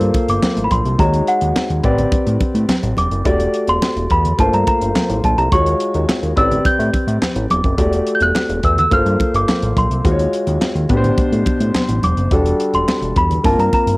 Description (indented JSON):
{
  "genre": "early-eighties boogie funk",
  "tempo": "106 BPM",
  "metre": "4/4",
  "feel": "straight",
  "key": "unclear",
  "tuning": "A4 = 436 Hz",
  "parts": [
    { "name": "small celesta", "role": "melody", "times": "0.0-14.0 s", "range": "F#5 to G6", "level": "-19 LUFS", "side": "equal", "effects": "cassette tape" },
    { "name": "warm grand piano", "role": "accompaniment", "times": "0.0-14.0 s", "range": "B2 to D5", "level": "-19 LUFS", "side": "left 1 dB", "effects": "none" },
    { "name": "fat analog bass", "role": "bass", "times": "0.0-14.0 s", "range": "E1 to A2", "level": "-18 LUFS", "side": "equal", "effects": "none" },
    { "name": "tight funk drum kit", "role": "drums", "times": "0.0-14.0 s", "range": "handclaps, hi-hat, kick drum, snare drum", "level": "-20 LUFS", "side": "equal", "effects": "cassette tape" },
    { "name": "congas", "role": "percussion", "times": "0.1-13.9 s", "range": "none", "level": "-24 LUFS", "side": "right 1 dB", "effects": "none" }
  ],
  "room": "little or no reverb",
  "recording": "home recording on cassette",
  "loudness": "-14 LUFS",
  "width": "side -22 dB against mid",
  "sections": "0.0-14.0 A section",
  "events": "none",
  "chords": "0.0 Gm11; 1.0 D#m7; 1.8 Am11; 3.3 Em11; 4.4 Gm11; 5.5 D#m11; 6.4 Am11; 7.8 Em11; 8.9 Gm11; 10.0 D#m11; 10.9 Am11; 12.3 Em11; 13.4 Gm11"
}